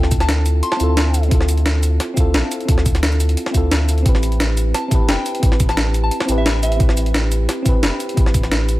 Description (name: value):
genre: liquid drum and bass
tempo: 175 BPM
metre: 4/4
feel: straight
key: A minor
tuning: A4 = 442 Hz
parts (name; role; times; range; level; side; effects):
- mellow FM electric piano; accompaniment; 0.0-8.8 s; C4 to B4; -23 LUFS; equal; chorus, tape echo
- warm sub bass; bass; 0.0-8.8 s; E1 to D2; -18 LUFS; equal; tube saturation
- breakbeat sampler-style drum kit; drums; 0.0-8.8 s; hi-hat, shaker, snare drum; -21 LUFS; equal; none
- electronic kick drum; drums; 0.1-8.4 s; none; -16 LUFS; equal; none
- soft synth bell; melody; 0.2-1.2, 4.7-6.9 s; E5 to C6; -25 LUFS; left 1 dB; chorus, tape echo
room: little or no reverb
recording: none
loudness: -14 LUFS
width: side -17 dB against mid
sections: 0.0-8.8 A section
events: none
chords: 0.0 Dm9; 4.1 Am9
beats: 0.29 0.63 0.97 | 1.31 1.66 2.00 2.34 | 2.69 3.03 3.37 3.71 | 4.06 4.40 4.74 5.09 | 5.43 5.77 6.12 6.46 | 6.80 7.14 7.49 7.83 | 8.17 8.52